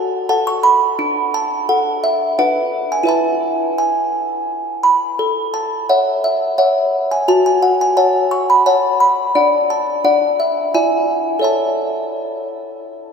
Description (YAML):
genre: classical, lullaby for music box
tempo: 86 BPM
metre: 3/4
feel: straight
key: A major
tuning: A4 = 440 Hz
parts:
  - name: music box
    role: solo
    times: 0.0-13.1 s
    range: D4 to C#6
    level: -14 LUFS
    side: equal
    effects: none
room: wet cathedral reverb, RT60 4.9 s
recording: in a vast, echoing space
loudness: -14 LUFS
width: side -6 dB against mid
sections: 0.0-13.1 A section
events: none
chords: 0.0 F#m; 1.0 D5; 2.4 Bm/D; 3.1 E; 5.2 A; 7.3 F#5; 9.4 D; 10.1 N.C.; 10.7 E7; 11.5 A